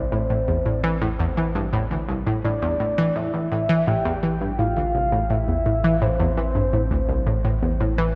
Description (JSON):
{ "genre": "ambient, sequencer-driven space music", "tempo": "84 BPM", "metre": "4/4", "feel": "straight", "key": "A minor", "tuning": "A4 = 439 Hz", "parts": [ { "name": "soft octave-layered synth lead", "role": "melody", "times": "0.0-7.4 s", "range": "C5 to G5", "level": "-28 LUFS", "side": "equal", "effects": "chorus, phaser, tape echo" }, { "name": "analog pluck", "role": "riff", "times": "0.0-8.1 s", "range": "C2 to E3", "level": "-25 LUFS", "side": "equal", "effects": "chorus, tape echo" }, { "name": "warm sub bass", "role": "bass", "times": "0.0-8.2 s", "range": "A1", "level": "-30 LUFS", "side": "equal", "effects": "none" } ], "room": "wet lush hall reverb, RT60 2.6 s", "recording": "dark, warm production", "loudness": "-22 LUFS", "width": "mono", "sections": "0.0-8.2 A section", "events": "none", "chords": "0.0 Am" }